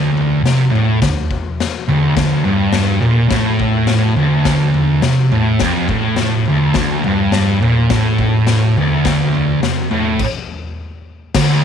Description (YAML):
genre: garage rock duo or trio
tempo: 104 BPM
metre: 4/4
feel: straight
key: D minor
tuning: A4 = 439 Hz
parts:
  - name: thick fuzz guitar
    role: riff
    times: 0.0-11.6 s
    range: D2 to C3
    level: -13 LUFS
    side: right 1 dB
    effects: distortion
  - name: raw garage drum kit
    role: drums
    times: 0.2-11.5 s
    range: crash cymbal, kick drum, snare drum, toms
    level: -20 LUFS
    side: left 4 dB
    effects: none
room: small room ambience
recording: 1960s-style stereo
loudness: -13 LUFS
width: side -8 dB against mid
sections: 0.0-11.3 A section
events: stop 10.2-11.3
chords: none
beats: 0.43 1.00 1.58 | 2.15 2.73 3.30 3.88 | 4.45 5.03 5.60 6.17 | 6.75 7.32 7.89 8.47 | 9.04 9.62 10.20 10.77 | 11.35